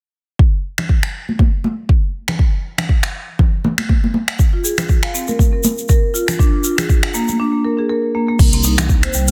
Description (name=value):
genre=afro house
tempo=120 BPM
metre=4/4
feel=swing 56% on 16ths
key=C minor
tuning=A4 = 440 Hz
part: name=electronic kick drum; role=drums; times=0.4-9.0 s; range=none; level=-16 LUFS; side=equal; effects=none
part: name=afro-pop drum kit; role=drums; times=0.8-9.3 s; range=crash cymbal, finger snaps, hi-hat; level=-24 LUFS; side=equal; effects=soft clipping on snare
part: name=congas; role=percussion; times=0.8-9.3 s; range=none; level=-24 LUFS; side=equal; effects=none
part: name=egg shaker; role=percussion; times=4.4-9.3 s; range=none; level=-25 LUFS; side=equal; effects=none
part: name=marimba with medium mallets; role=arpeggios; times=4.5-9.3 s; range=G3 to F5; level=-21 LUFS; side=equal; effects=sidechain pumping, digital delay
part: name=dark detuned saw bass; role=bass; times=8.4-9.3 s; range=C2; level=-20 LUFS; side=equal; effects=sidechain pumping
room=little or no reverb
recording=dense, heavily limited modern master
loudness=-16 LUFS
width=mono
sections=0.4-8.4 A section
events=none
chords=0.4 N.C.; 4.4 Fm; 6.4 Bb; 8.4 Cm